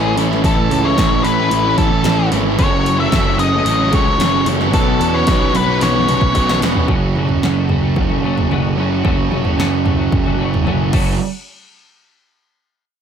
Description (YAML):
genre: quiet-loud alternative rock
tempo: 111 BPM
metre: 4/4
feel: straight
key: F# minor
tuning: A4 = 440 Hz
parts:
  - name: octave-fuzz lead guitar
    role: melody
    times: 0.0-6.6 s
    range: A4 to E5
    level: -19 LUFS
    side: left 3 dB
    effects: distortion, plate reverb, digital delay
  - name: tonewheel organ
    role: sustained chords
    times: 0.0-6.9 s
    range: E4 to F#5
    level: -29 LUFS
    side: equal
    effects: slow rotary speaker, chorus vibrato, plate reverb
  - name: overdriven semi-hollow guitar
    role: riff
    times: 0.0-6.9 s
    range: F#2 to E4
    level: -21 LUFS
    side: left 13 dB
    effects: none
  - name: thick fuzz guitar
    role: riff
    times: 0.0-11.2 s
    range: F#2 to E4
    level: -19 LUFS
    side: right 13 dB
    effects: distortion
  - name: fuzz picked electric bass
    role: bass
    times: 0.0-11.2 s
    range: E1 to E2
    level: -19 LUFS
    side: equal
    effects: overdrive
  - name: punchy analog drum machine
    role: drums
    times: 0.2-11.1 s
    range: crash cymbal, hi-hat, kick drum, snare drum, toms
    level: -19 LUFS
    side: equal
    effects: none
  - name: twelve-string electric guitar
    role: arpeggios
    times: 6.9-11.1 s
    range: F#2 to F#4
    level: -23 LUFS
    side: left 8 dB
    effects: ensemble chorus, plate reverb
room: light reverb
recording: none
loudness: -13 LUFS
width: side -8 dB against mid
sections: 0.0-6.9 A section; 6.9-11.2 B section; 11.2-13.0 C section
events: drum fill 5.8-6.9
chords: 0.0 A; 2.6 F#m; 4.7 Bsus2; 6.9 F#m; 11.2 N.C.